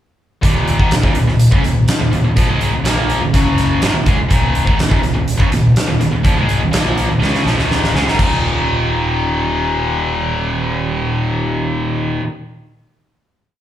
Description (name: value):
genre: classic rock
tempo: 124 BPM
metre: 4/4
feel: straight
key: unclear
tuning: A4 = 440 Hz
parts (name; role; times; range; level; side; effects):
- tight distorted guitar; riff; 0.4-12.2 s; Eb2 to Db4; -16 LUFS; equal; distortion
- fuzz picked electric bass; bass; 0.4-12.2 s; Eb1 to Db2; -22 LUFS; equal; overdrive
- huge arena drum kit; drums; 0.4-8.3 s; crash cymbal, hi-hat, kick drum, snare drum; -16 LUFS; equal; none
room: moderate large studio reverb, RT60 1.0 s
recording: band playing live in one room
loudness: -13 LUFS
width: side -11 dB against mid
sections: 0.4-8.2 riff; 8.2-12.1 final chord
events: drum fill 7.2-8.2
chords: 0.4 Eb5; 3.3 Gb5; 3.8 Eb5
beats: | 0.43 0.91 1.40 1.88 | 2.37 2.85 3.34 3.82 | 4.31 4.79 5.28 5.76 | 6.25 6.73 7.22 7.70 | 8.19 8.68 9.16 9.65 | 10.14 10.62 11.11 11.60